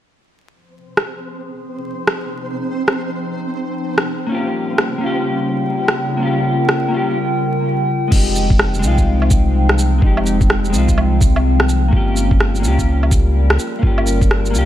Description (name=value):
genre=future garage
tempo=126 BPM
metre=4/4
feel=swing 62% on 16ths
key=F minor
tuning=A4 = 435 Hz
part: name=warbly tape-like pad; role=sustained chords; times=1.5-14.7 s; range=Db3 to G5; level=-21 LUFS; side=equal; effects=chorus, built-in reverb, sidechain pumping
part: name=flickering grainy texture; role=texture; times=1.1-7.2 s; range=C4 to C5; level=-28 LUFS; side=right 2 dB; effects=built-in reverb
part: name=garage drum kit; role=drums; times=1.0-14.7 s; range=crash cymbal, rim click, shaker, woodblock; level=-20 LUFS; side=right 1 dB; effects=small room ambience
part: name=mellow electric guitar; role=accompaniment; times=4.3-14.7 s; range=Ab3 to G4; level=-21 LUFS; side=left 2 dB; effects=analog chorus, sidechain pumping, analog delay
part: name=warm sub bass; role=bass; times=8.1-14.7 s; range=F1 to Db2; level=-16 LUFS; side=equal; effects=sidechain pumping
part: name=electronic kick drum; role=drums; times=8.1-14.3 s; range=none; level=-14 LUFS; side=equal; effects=small room ambience
room=light reverb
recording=vinyl crackle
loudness=-14 LUFS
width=side -12 dB against mid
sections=0.5-8.1 A section; 8.1-14.7 B section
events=fade-in on ambient pad 0.5-8.1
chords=0.5 Fm7; 4.3 Gm7b5; 8.1 Fm7; 11.9 Gm7b5